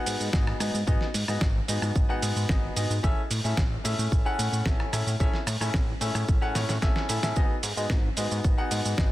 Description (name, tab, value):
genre	nu-disco, nu disco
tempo	111 BPM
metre	4/4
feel	straight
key	G# phrygian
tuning	A4 = 440 Hz
part	clear concert grand piano	accompaniment	0.0-9.1 s	B3 to F#5	-31 LUFS	left 1 dB	digital delay
part	fat analog bass	bass	0.1-9.1 s	G#1 to A2	-29 LUFS	equal	none
part	dusty soul sampler-style drum kit	drums	0.1-9.1 s	hi-hat, rim click, shaker, snare drum	-31 LUFS	right 1 dB	soft clipping on snare
part	electronic kick drum	drums	0.3-9.1 s	none	-25 LUFS	equal	none
room	digital ambience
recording	dense, heavily limited modern master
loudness	-24 LUFS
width	side -16 dB against mid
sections	0.0-9.1 A section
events	drum fill 6.6-7.4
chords	0.0 G#m7; 3.0 Amaj7; 7.4 G#m7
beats	0.34 | 0.88 1.42 1.96 2.50 | 3.04 3.58 4.12 4.66 | 5.20 5.74 6.28 6.82 | 7.36 7.90 8.44 8.98